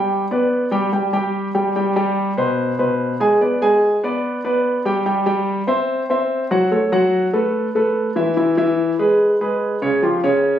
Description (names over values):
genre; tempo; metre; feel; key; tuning
jazz; 145 BPM; 4/4; straight; unclear; A4 = 440 Hz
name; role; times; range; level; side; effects
warm grand piano; solo; 0.0-10.6 s; B2 to Ab5; -16 LUFS; equal; none
room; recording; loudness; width
light reverb; recorded on a phone in the room, club reverb, compression; -16 LUFS; side -10 dB against mid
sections
0.0-1.8 A section; 1.8-10.6 B section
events
none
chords
0.0 G; 0.9 N.C.; 1.8 C5; 3.4 G; 5.1 C; 6.7 F#m; 7.5 Esus4; 8.4 E6; 10.0 Db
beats
| 0.10 0.51 0.93 1.34 | 1.75 2.17 2.58 3.00 | 3.41 3.82 4.24 4.65 | 5.06 5.47 5.89 6.30 | 6.72 7.13 7.54 7.96 | 8.37 8.78 9.20 9.61 | 10.03 10.44